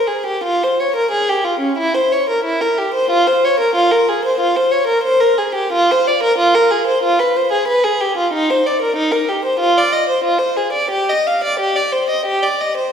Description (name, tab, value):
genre	classical, baroque-style suite movement for unaccompanied violin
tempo	92 BPM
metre	4/4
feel	uneven beats, rubato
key	F minor, C minor from 5.7 s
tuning	A4 = 438 Hz
part	warm violin	solo	0.0-12.9 s	Db4 to F5	-14 LUFS	equal	none
room	wet scoring stage reverb, RT60 1.6 s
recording	heard from further back in the room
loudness	-14 LUFS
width	side -7 dB against mid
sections	0.0-12.9 A section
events	none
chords	none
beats	| 0.44 1.12 1.78 2.45 | 3.12 3.77 4.41 5.05 | 5.73 6.38 7.03 7.67 | 8.33 8.97 9.61 10.24 | 10.92 11.60 12.26